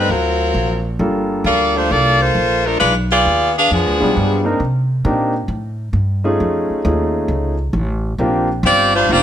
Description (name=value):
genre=jazz, big band swing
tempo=133 BPM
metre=4/4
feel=swing 67% on 8ths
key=unclear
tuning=A4 = 436 Hz
part: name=warm saxophone section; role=melody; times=0.0-4.4, 8.7-9.2 s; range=F3 to F5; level=-14 LUFS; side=equal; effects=none
part: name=clear grand piano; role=accompaniment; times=0.0-9.2 s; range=G3 to Bb4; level=-18 LUFS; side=equal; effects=none
part: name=upright bass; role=bass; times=0.0-9.2 s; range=F1 to C3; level=-19 LUFS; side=equal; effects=none
room=light reverb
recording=none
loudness=-14 LUFS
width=side -10 dB against mid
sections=0.0-9.2 A section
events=none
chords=0.1 D7alt; 1.0 Gm9; 2.8 G7b9; 4.6 Cm9; 6.4 F7alt; 8.2 Bb69